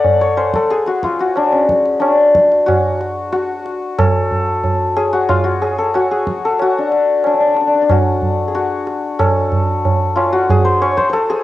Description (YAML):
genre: indian classical, Hindustani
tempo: 92 BPM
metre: 4/4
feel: straight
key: unclear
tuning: A4 = 440 Hz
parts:
  - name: santur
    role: melody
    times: 0.0-11.4 s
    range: C#4 to F#5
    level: -14 LUFS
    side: left 2 dB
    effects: cassette tape
  - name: tabla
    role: percussion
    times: 0.0-11.4 s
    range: none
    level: -18 LUFS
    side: right 3 dB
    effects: none
room: light reverb, small room ambience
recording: home recording on cassette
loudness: -13 LUFS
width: side -15 dB against mid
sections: 0.0-11.4 A section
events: none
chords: none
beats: 0.04 0.70 | 1.36 2.02 2.67 3.33 | 3.98 4.64 5.29 5.94 | 6.59 7.25 7.90 8.55 | 9.19 9.84 10.49 11.13